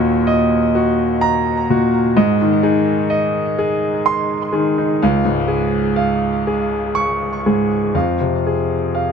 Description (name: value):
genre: neoclassical minimalist piano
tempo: 42 BPM (dotted quarters)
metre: 6/8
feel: rubato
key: unclear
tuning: A4 = 440 Hz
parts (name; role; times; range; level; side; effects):
- clear concert grand piano; solo; 0.0-9.1 s; Db2 to Db6; -15 LUFS; equal; tape echo
room: light reverb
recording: close, detailed microphones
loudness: -15 LUFS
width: side -6 dB against mid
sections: 0.0-9.1 A section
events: none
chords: 0.0 Ebm; 2.1 Ab; 5.0 Db; 7.9 Fm